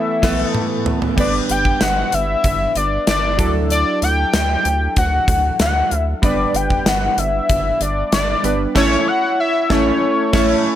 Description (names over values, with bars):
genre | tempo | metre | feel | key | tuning
1980s-style pop | 95 BPM | 4/4 | straight | unclear | A4 = 443 Hz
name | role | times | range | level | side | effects
fat analog lead | melody | 0.0-10.8 s | C#5 to G5 | -19 LUFS | left 2 dB | chorus, tape echo
chorused retro synth keys | accompaniment | 0.0-10.8 s | E3 to C#5 | -20 LUFS | right 1 dB | none
rubbery square bass | bass | 0.2-10.6 s | G1 to D2 | -22 LUFS | equal | none
gated 80s drum kit | drums | 0.2-10.5 s | crash cymbal, hi-hat, kick drum, snare drum, toms | -20 LUFS | equal | none
room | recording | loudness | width
light reverb, small room ambience | none | -15 LUFS | side -11 dB against mid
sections
0.0-1.2 A section; 1.2-10.8 B section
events
drum fill 0.0-1.2, 8.8-10.8; band accent 0.0-1.2, 8.8-10.8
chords
0.0 Asus2/B; 1.2 G; 3.4 Dadd9; 6.2 G; 8.8 A